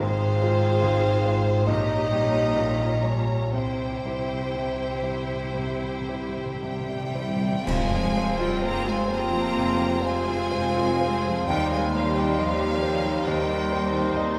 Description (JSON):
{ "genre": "classical, romantic movement for piano and orchestra", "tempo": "52-73 BPM", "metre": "4/4", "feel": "rubato", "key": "F minor", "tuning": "A4 = 438 Hz", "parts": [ { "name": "clear grand piano", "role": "melody", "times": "0.0-14.4 s", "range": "Ab1 to Eb5", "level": "-30 LUFS", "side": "equal", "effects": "none" }, { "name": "clear studio violin section", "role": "melody", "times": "0.0-14.1 s", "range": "C5 to Bb5", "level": "-37 LUFS", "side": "equal", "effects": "none" }, { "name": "rich studio violin section", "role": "second line", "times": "0.0-14.4 s", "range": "Eb4 to Bb5", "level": "-38 LUFS", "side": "equal", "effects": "none" }, { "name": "clear studio viola section", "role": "accompaniment", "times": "0.0-14.4 s", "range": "G3 to Ab4", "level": "-38 LUFS", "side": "equal", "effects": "none" }, { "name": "dark bassoon", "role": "accompaniment", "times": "0.0-14.4 s", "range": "F3 to Eb4", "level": "-32 LUFS", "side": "equal", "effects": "none" }, { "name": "clear symphonic cello section", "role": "bass", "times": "0.0-14.1 s", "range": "Ab2 to Bb3", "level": "-35 LUFS", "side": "equal", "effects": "none" }, { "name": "rich studio double bass section", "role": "bass", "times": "0.0-14.4 s", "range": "Ab1 to F2", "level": "-36 LUFS", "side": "equal", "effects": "none" }, { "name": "cymbal swell, clash cymbals and concert bass drum", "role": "percussion", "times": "3.5-9.5 s", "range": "none", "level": "-37 LUFS", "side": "equal", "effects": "none" }, { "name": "timpani", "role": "percussion", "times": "3.5-9.1 s", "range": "F2 to C3", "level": "-38 LUFS", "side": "equal", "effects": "none" }, { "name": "mellow hollow flute section", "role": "second line", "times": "6.6-14.1 s", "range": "Db5 to G5", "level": "-36 LUFS", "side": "equal", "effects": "none" }, { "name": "warm clarinet", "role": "second line", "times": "7.7-14.4 s", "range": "Eb4 to F4", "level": "-38 LUFS", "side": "equal", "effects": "none" }, { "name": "warm oboe", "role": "second line", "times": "7.7-14.4 s", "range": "C5", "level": "-35 LUFS", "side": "equal", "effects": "none" }, { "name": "clear trombone section", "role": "sustained chords", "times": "7.7-14.4 s", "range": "C3 to G3", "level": "-38 LUFS", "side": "equal", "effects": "none" }, { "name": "mellow French horn section", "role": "sustained chords", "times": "7.7-14.4 s", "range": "C4 to F4", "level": "-38 LUFS", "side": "equal", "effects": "none" }, { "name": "mellow tuba", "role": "bass", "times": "7.7-14.4 s", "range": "F1 to Eb2", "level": "-36 LUFS", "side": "equal", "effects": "none" } ], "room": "wet scoring stage reverb, RT60 1.8 s", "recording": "none", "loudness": "-25 LUFS", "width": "mono", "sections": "0.0-7.7 A section; 7.7-14.4 B section", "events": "timpani fill 3.5-7.7; band accent 7.7-8.6", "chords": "0.0 Fm/Ab; 1.7 Gdim/Bb; 3.5 C; 7.7 Fm; 11.5 Cm/Eb", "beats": "| 0.03 0.85 1.69 2.58 | 3.54 4.55 5.54 6.63 | 7.67 8.65 9.57 10.52 | 11.48 12.39 13.27 14.14" }